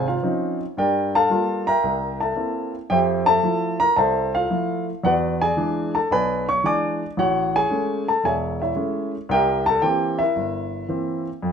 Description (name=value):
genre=solo jazz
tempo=112 BPM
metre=4/4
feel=swing 69% on 8ths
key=unclear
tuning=A4 = 444 Hz
part: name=warm baby grand piano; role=solo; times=0.0-11.5 s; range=E1 to D6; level=-19 LUFS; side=equal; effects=none
room=moderate large studio reverb, RT60 1.0 s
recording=minimal, uncompressed stereo recording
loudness=-19 LUFS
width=side -7 dB against mid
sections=0.0-11.4 A section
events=none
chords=0.0 Dbmaj9; 0.8 Gm7; 1.8 C7; 2.9 Fmaj7; 5.0 E7; 7.2 Amaj7; 9.3 C7